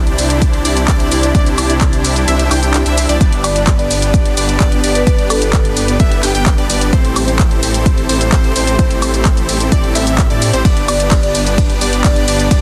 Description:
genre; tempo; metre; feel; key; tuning
EDM, festival progressive house; 129 BPM; 4/4; straight; G major; A4 = 440 Hz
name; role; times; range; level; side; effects
dark studio string section; sustained chords; 0.0-12.6 s; C3 to E4; -26 LUFS; equal; sidechain pumping
plucky unison lead; arpeggios; 0.0-12.6 s; C5 to G5; -25 LUFS; equal; sidechain pumping, dub echo
supersaw chords; riff; 0.0-12.6 s; B3 to G5; -21 LUFS; equal; sidechain pumping, dub echo
detuned saw bass; bass; 0.0-12.6 s; G1 to A2; -20 LUFS; equal; chorus, sidechain pumping
pop drum kit; drums; 0.1-12.6 s; handclaps, hi-hat, ride cymbal, shaker, woodblock; -21 LUFS; equal; none
electronic kick drum; drums; 0.4-12.6 s; none; -15 LUFS; equal; overdrive
marimba with medium mallets; melody; 3.4-6.0, 10.9-12.2 s; A4 to D5; -23 LUFS; equal; dub echo
room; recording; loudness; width
digital ambience; dense, heavily limited modern master; -13 LUFS; mono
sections
0.0-12.6 A section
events
kick drops out 2.3-3.2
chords
0.0 Cadd9; 3.2 G; 6.9 Am7; 10.7 G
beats
0.42 0.88 | 1.35 1.81 2.28 2.74 | 3.21 3.67 4.14 4.60 | 5.07 5.53 6.00 6.46 | 6.93 7.39 7.86 8.32 | 8.79 9.26 9.72 10.19 | 10.65 11.12 11.58 12.05 | 12.51

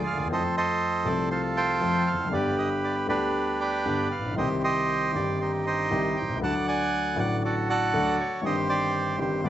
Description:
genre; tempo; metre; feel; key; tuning
tango; 118 BPM; 4/4; rubato; C harmonic minor; A4 = 441 Hz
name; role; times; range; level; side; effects
bandoneon; melody; 0.0-9.5 s; D4 to A5; -26 LUFS; right 3 dB; none
warm concert grand piano; accompaniment; 0.1-9.5 s; G1 to A4; -27 LUFS; left 2 dB; none
room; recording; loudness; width
wet large studio reverb, RT60 1.1 s; vinyl crackle, nothing above 7.9 kHz; -24 LUFS; side -12 dB against mid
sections
0.0-9.5 A section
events
none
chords
0.3 F; 2.3 G; 4.4 Cm; 6.4 D; 8.4 Cm/G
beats
| 0.31 0.81 1.31 1.82 | 2.33 2.83 3.35 3.87 | 4.38 4.89 5.41 5.91 | 6.42 6.92 7.43 7.94 | 8.44 8.94 9.45

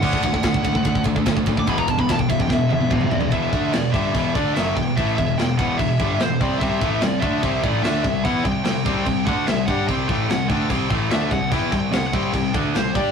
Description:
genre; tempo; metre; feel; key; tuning
heavy metal; 146 BPM; 4/4; straight; E minor; A4 = 440 Hz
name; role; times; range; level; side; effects
high-gain lead guitar; melody; 0.0-13.1 s; C5 to D6; -25 LUFS; left 1 dB; distortion
heavy high-gain guitar; riff; 0.0-13.1 s; E2 to G4; -24 LUFS; right 3 dB; distortion
sludgy distorted guitar; riff; 0.0-13.1 s; E2 to G4; -24 LUFS; left 5 dB; overdrive
fuzz picked electric bass; bass; 0.0-13.1 s; E1 to A2; -29 LUFS; right 1 dB; overdrive
tight metal drum kit; drums; 0.0-13.1 s; crash cymbal, kick drum, ride cymbal, snare drum, toms; -24 LUFS; equal; none
room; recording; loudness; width
moderate small room reverb, RT60 0.5 s; rough rehearsal-room recording, warm saturation; -18 LUFS; side -6 dB against mid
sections
0.0-3.3 A section; 3.3-13.1 B section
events
lead electric guitar solo 0.0-3.3; drum fill 2.5-3.3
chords
0.0 D; 1.7 E5; 3.3 Em; 6.6 C5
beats
| 0.03 0.44 0.85 1.26 | 1.67 2.08 2.50 2.91 | 3.32 3.73 4.14 4.55 | 4.96 5.38 5.79 6.20 | 6.61 7.02 7.43 7.84 | 8.25 8.66 9.07 9.48 | 9.89 10.30 10.71 11.12 | 11.52 11.93 12.34 12.75

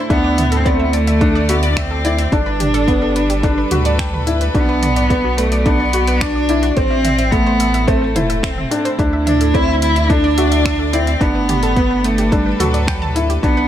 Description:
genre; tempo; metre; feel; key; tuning
piano and strings electronica; 108 BPM; 4/4; straight; unclear; A4 = 443 Hz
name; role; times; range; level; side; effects
warm studio string section; sustained chords; 0.0-13.7 s; A2 to D5; -24 LUFS; equal; sidechain pumping
rich cello; melody; 0.1-13.7 s; F#3 to E4; -18 LUFS; equal; none
analog pluck; arpeggios; 0.1-13.6 s; F#4 to A5; -26 LUFS; right 2 dB; chorus, sidechain pumping, ping-pong delay
felt-muted upright piano; riff; 0.1-13.7 s; A3 to F#4; -20 LUFS; left 1 dB; ping-pong delay
warm sub bass; bass; 0.1-13.7 s; E1 to D2; -19 LUFS; equal; sidechain pumping
deep house drum kit; drums; 0.1-13.5 s; finger snaps, hi-hat, toms; -24 LUFS; right 1 dB; small room ambience
electronic kick drum; drums; 0.1-13.5 s; none; -19 LUFS; equal; small room ambience
room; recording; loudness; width
light reverb, studio ambience; none; -13 LUFS; side -11 dB against mid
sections
0.0-13.7 A section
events
none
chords
0.1 Dsus2; 2.3 Gadd9; 4.5 Bm; 6.8 Am; 9.0 Dsus2; 11.2 Gadd9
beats
| 0.10 0.66 1.21 1.77 | 2.32 2.88 3.43 3.99 | 4.55 5.10 5.66 6.21 | 6.77 7.32 7.88 8.43 | 8.99 9.55 10.10 10.66 | 11.21 11.77 12.32 12.88 | 13.43

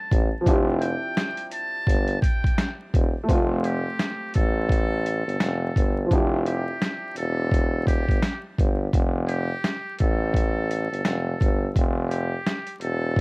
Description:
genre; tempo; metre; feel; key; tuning
hip hop, boom-bap hip-hop; 85 BPM; 4/4; swing 62% on 16ths; F major; A4 = 440 Hz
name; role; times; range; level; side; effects
trumpet with metal mute; melody; 0.0-13.2 s; G4 to A5; -31 LUFS; equal; high-pass filter, low-pass filter, cassette tape
dark upright piano; accompaniment; 0.0-9.0 s; F3 to G4; -28 LUFS; equal; cassette tape, high-pass filter, low-pass filter
clear tuba; bass; 0.1-13.2 s; E1 to A1; -25 LUFS; equal; none
boom bap sampler-style drum kit; drums; 0.1-13.2 s; hi-hat, kick drum, snare drum; -23 LUFS; equal; cassette tape
room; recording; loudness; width
little or no reverb; home recording on cassette, vinyl crackle; -21 LUFS; side -33 dB against mid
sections
0.0-3.3 A section; 3.3-13.2 B section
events
none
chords
0.5 Cadd9/F; 3.3 F; 6.1 Cadd9; 8.9 F; 11.8 Emadd11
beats
| 0.46 1.17 1.87 2.58 | 3.28 3.99 4.70 5.40 | 6.11 6.81 7.52 8.22 | 8.93 9.64 10.34 11.05 | 11.75 12.46 13.17

